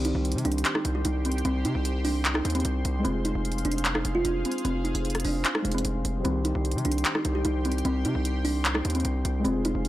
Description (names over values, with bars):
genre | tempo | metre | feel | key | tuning
hip hop, trap | 150 BPM | 4/4 | half-time | C minor | A4 = 440 Hz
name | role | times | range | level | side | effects
kalimba | melody | 0.0-9.9 s | C4 to G4 | -28 LUFS | right 1 dB | none
dark concert grand piano | accompaniment | 0.0-9.9 s | Eb3 to Ab4 | -35 LUFS | left 1 dB | none
sweeping resonant pad | sustained chords | 0.0-9.9 s | G4 to C6 | -37 LUFS | left 1 dB | chorus
distorted 808-style bass | bass | 0.0-9.9 s | F1 to C3 | -28 LUFS | equal | distortion
trap drum kit | drums | 0.0-9.9 s | handclaps, hi-hat, rim click | -30 LUFS | equal | none
room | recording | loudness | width
digital ambience | dry, gritty hardware recording, transformer saturation | -24 LUFS | side -15 dB against mid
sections
0.0-9.9 A section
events
none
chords
0.0 Cm; 3.0 Fm; 6.2 Cm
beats
0.25 0.65 1.05 | 1.45 1.85 2.25 2.65 | 3.05 3.45 3.85 4.25 | 4.65 5.05 5.45 5.85 | 6.25 6.65 7.05 7.45 | 7.85 8.25 8.65 9.05 | 9.45 9.85